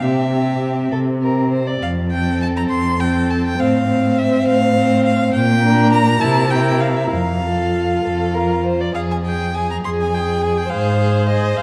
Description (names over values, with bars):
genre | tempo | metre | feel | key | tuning
quick classical-period movement for string quartet | 68 BPM (dotted quarters) | 6/8 | straight | F major | A4 = 440 Hz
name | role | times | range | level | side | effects
clear violin | melody | 0.0-11.6 s | Eb5 to C6 | -25 LUFS | equal | none
rich violin | second line | 0.0-11.6 s | G4 to D5 | -25 LUFS | equal | none
rich viola | accompaniment | 0.0-11.6 s | C4 to C5 | -23 LUFS | equal | none
rich cello | bass | 0.0-11.6 s | F2 to C3 | -21 LUFS | equal | none
room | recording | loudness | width
moderate concert hall reverb, RT60 2.0 s | dark, warm production | -17 LUFS | mono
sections
0.0-9.0 A section; 9.0-11.6 B section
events
none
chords
0.0 C; 1.8 F; 3.6 F/A; 5.3 Gm/Bb; 6.2 C7; 7.1 F; 9.0 Fm; 10.7 Fm/Ab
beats
| 0.02 0.92 | 1.82 2.71 | 3.59 4.47 | 5.34 6.22 | 7.12 8.04 | 8.95 9.84 | 10.71 11.57